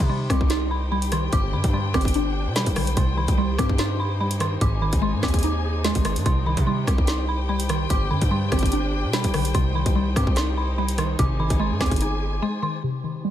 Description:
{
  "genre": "hip hop, drill",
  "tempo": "146 BPM",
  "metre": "4/4",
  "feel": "half-time",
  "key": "C harmonic minor",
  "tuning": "A4 = 441 Hz",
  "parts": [
    { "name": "dark detuned synth bell", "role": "melody", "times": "0.0-13.3 s", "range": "B5 to D6", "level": "-30 LUFS", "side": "equal", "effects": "chorus, low-pass filter" },
    { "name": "mallet-like synth pluck", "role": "accompaniment", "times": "0.0-13.3 s", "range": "G2 to Eb4", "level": "-27 LUFS", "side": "equal", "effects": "chorus, phaser, low-pass filter" },
    { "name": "dark symphonic string section", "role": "sustained chords", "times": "0.0-13.3 s", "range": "G3 to Ab5", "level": "-32 LUFS", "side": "left 1 dB", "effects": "low-pass filter" },
    { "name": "distorted 808-style bass", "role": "bass", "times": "0.0-12.4 s", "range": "G1 to C3", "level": "-25 LUFS", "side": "equal", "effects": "distortion" },
    { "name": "drill drum kit", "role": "drums", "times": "0.0-12.1 s", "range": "hi-hat, kick drum, rim click, snare drum", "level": "-24 LUFS", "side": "equal", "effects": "none" }
  ],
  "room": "digital ambience",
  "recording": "none",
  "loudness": "-20 LUFS",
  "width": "side -11 dB against mid",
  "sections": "0.0-12.8 A section",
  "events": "drums muted 12.4-12.8",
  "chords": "0.0 Cm; 1.3 Gsus4; 3.0 Cm; 4.6 Ab; 6.3 Cm; 7.9 Gsus4; 9.5 Cm; 11.2 Ab",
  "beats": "0.09 0.50 0.92 | 1.33 1.74 2.15 2.56 | 2.97 3.38 3.79 4.20 | 4.61 5.03 5.44 5.85 | 6.26 6.67 7.08 7.49 | 7.90 8.31 8.72 9.13 | 9.54 9.96 10.37 10.78 | 11.19 11.60 12.01 12.42 | 12.83 13.24"
}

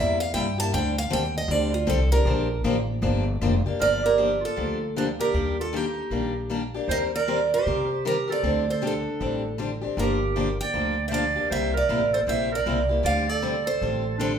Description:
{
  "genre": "acoustic string swing (jazz manouche)",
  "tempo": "156 BPM",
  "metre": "4/4",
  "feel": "swing 62% on 8ths",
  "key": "G minor",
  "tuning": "A4 = 442 Hz",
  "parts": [
    { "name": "picked steel-string acoustic guitar", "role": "melody", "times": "0.0-14.4 s", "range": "F4 to A5", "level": "-26 LUFS", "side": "right 3 dB", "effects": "none" },
    { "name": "picked steel-string acoustic guitar", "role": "accompaniment", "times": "0.0-14.3 s", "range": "C3 to Bb4", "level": "-28 LUFS", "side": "left 4 dB", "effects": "none" },
    { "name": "upright bass", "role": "bass", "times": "0.0-14.4 s", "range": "F1 to C3", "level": "-28 LUFS", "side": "equal", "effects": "none" },
    { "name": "breathy clarinet", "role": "second line", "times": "3.8-14.4 s", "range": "D4 to D5", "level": "-29 LUFS", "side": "right 4 dB", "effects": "none" }
  ],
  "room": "moderate large studio reverb, RT60 1.1 s",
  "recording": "band playing live in one room",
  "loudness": "-22 LUFS",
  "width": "side -8 dB against mid",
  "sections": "0.0-3.8 A section; 3.8-14.4 B section",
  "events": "steel-string acoustic guitar solo 0.0-3.8",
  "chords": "0.0 C7; 0.7 D7sus4; 2.3 Gm7; 5.3 Ebmaj7; 6.9 Cm9/Eb; 8.4 D7sus4; 10.0 Gm7; 11.5 C7; 13.1 D7sus4",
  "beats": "0.34 | 0.72 1.11 1.49 1.88 | 2.26 2.65 3.03 3.42 | 3.80 4.19 4.57 4.96 | 5.34 5.73 6.11 6.50 | 6.89 7.27 7.66 8.04 | 8.43 8.81 9.20 9.58 | 9.97 10.35 10.74 11.12 | 11.51 11.90 12.28 12.67 | 13.05 13.44 13.82 14.21"
}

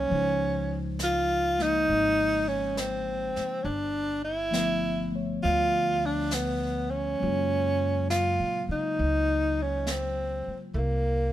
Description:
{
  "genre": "jazz ballad",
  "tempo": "68 BPM",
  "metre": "4/4",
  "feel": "swing 67% on 8ths",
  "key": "unclear",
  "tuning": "A4 = 440 Hz",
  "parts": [
    { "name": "breathy tenor saxophone", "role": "melody", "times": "0.0-11.3 s", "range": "A3 to F4", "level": "-26 LUFS", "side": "equal", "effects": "none" },
    { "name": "mellow tine electric piano", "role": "accompaniment", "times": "0.0-10.8 s", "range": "Db3 to E5", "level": "-33 LUFS", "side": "left 3 dB", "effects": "none" },
    { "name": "upright bass", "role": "bass", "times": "0.0-11.3 s", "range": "G1 to Db3", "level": "-32 LUFS", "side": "equal", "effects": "none" },
    { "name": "jazz brush drum kit", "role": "drums", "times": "0.1-11.3 s", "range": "brushed snare drum, hi-hat, snare drum", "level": "-36 LUFS", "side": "right 1 dB", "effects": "none" }
  ],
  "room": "little or no reverb",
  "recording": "minimal, uncompressed stereo recording",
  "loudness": "-25 LUFS",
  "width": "side -13 dB against mid",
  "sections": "0.0-11.3 A section",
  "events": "none",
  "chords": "0.1 Dbmaj9; 3.6 G13; 7.2 Gbmaj9; 10.7 C7(no3)",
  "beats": "| 0.11 0.99 1.88 2.76 | 3.65 4.54 5.42 6.31 | 7.20 8.09 8.97 9.86 | 10.75"
}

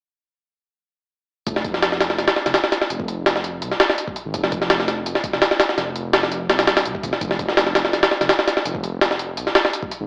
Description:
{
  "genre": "drum and bass, jungle",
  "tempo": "167 BPM",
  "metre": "4/4",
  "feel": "straight",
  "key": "F dorian",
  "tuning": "A4 = 440 Hz",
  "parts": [
    { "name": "dark detuned saw bass", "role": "bass", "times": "1.5-10.1 s", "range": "D1 to C2", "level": "-31 LUFS", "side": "equal", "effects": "none" },
    { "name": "jungle sampler-style drum kit", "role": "drums", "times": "1.5-10.0 s", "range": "hi-hat, kick drum, snare drum", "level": "-20 LUFS", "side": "equal", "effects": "none" }
  ],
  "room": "light reverb",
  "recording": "AM radio sound",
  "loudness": "-20 LUFS",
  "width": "mono",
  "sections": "1.5-10.1 A section",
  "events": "none",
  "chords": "none",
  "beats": "| 1.47 1.83 2.19 2.54 | 2.90 3.26 3.62 3.98 | 4.34 4.70 5.06 5.42 | 5.78 6.14 6.50 6.86 | 7.22 7.58 7.93 8.29 | 8.65 9.01 9.37 9.73"
}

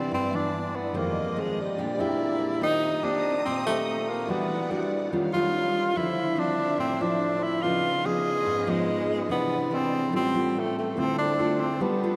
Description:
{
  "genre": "bossa nova",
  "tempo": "144 BPM",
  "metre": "4/4",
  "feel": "straight",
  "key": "unclear",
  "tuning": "A4 = 441 Hz",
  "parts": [
    { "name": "breathy tenor saxophone", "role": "melody", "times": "0.0-12.2 s", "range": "G3 to Ab4", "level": "-29 LUFS", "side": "equal", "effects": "none" },
    { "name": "nylon-string guitar", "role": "accompaniment", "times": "0.0-12.2 s", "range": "F2 to A4", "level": "-32 LUFS", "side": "equal", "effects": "none" },
    { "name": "vibraphone with soft mallets", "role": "accompaniment", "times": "0.0-12.2 s", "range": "F3 to Bb5", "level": "-37 LUFS", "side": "equal", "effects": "none" },
    { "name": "warm symphonic string section", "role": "sustained chords", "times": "0.0-12.2 s", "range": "A3 to Eb6", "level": "-38 LUFS", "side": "equal", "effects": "none" }
  ],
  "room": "wet cathedral reverb, RT60 5.1 s",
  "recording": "in a vast, echoing space",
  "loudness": "-26 LUFS",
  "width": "mono",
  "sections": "0.0-12.2 A section",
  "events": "none",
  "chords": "0.0 Cmaj9; 0.9 Fm7; 1.8 Bb13; 2.6 Eb6; 4.3 Em9; 5.1 Eb9; 6.0 Dm9; 7.6 Db9; 9.3 Cmaj9; 10.1 A7alt; 11.0 Dm7",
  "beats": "0.11 0.53 | 0.94 1.36 1.78 2.19 | 2.61 3.03 3.45 3.87 | 4.28 4.70 5.12 5.54 | 5.95 6.37 6.79 7.21 | 7.62 8.04 8.46 8.88 | 9.30 9.71 10.13 10.55 | 10.97 11.38 11.80"
}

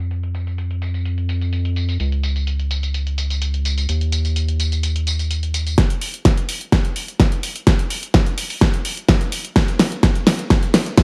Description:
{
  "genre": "progressive house",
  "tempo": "127 BPM",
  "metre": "4/4",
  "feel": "straight",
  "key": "unclear",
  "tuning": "A4 = 444 Hz",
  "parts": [
    { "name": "round analog bass", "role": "bass", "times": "0.0-5.8 s", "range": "Db2 to F2", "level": "-22 LUFS", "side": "equal", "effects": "sidechain pumping" },
    { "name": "deep house drum kit", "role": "drums", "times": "0.0-11.0 s", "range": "hi-hat, snare drum, tambourine", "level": "-22 LUFS", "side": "equal", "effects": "low-pass filter on hats, low-pass filter on perc, low-pass filter on snare, low-pass filter on room" },
    { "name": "electronic kick drum", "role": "drums", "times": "5.8-11.0 s", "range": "none", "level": "-19 LUFS", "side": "equal", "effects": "none" }
  ],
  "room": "light reverb",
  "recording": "low-pass filter",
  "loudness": "-19 LUFS",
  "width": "mono",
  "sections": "0.0-5.8 A section; 5.8-11.0 B section",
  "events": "filter sweep 0.0-5.8; build-up 5.8-11.0; drum fill 5.8-11.0",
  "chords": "none",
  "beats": "| 0.11 0.58 1.05 1.53 | 2.00 2.47 2.94 3.42 | 3.89 4.36 4.83 5.31 | 5.78 6.25 6.72 7.20 | 7.67 8.14 8.61 9.09 | 9.56 10.03 10.50 10.97"
}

